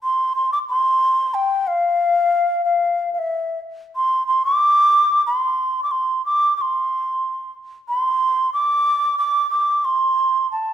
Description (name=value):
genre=andean folk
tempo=92 BPM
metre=3/4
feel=straight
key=unclear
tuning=A4 = 440 Hz
part: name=mellow large quena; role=solo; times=0.0-10.7 s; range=E5 to D6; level=-17 LUFS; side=equal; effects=none
room=moderate recital hall reverb, RT60 1.4 s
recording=none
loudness=-16 LUFS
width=side -10 dB against mid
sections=0.0-10.7 A section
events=none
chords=none